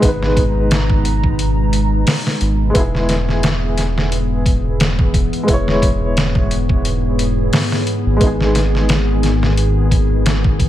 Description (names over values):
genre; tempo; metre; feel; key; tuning
trip hop; 88 BPM; 4/4; swing 56% on 16ths; G# minor; A4 = 440 Hz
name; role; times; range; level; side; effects
dark upright piano; accompaniment; 0.0-10.7 s; G#3 to C#5; -22 LUFS; equal; tremolo, vintage 12-bit sampler grit, tape echo
warbly tape-like pad; sustained chords; 0.0-10.7 s; G#2 to A#5; -21 LUFS; left 1 dB; chorus, built-in reverb
round analog bass; bass; 0.0-10.7 s; E1 to G#1; -18 LUFS; equal; none
trip hop sampler-style drum kit; drums; 0.0-10.7 s; hi-hat, kick drum, snare drum; -17 LUFS; equal; none
room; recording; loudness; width
little or no reverb; none; -13 LUFS; side -13 dB against mid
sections
0.0-10.7 A section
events
none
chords
0.0 G#m; 2.8 E; 8.2 G#m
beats
| 0.02 0.70 1.39 2.07 | 2.75 3.43 4.11 4.80 | 5.48 6.16 6.84 7.52 | 8.21 8.89 9.57 10.25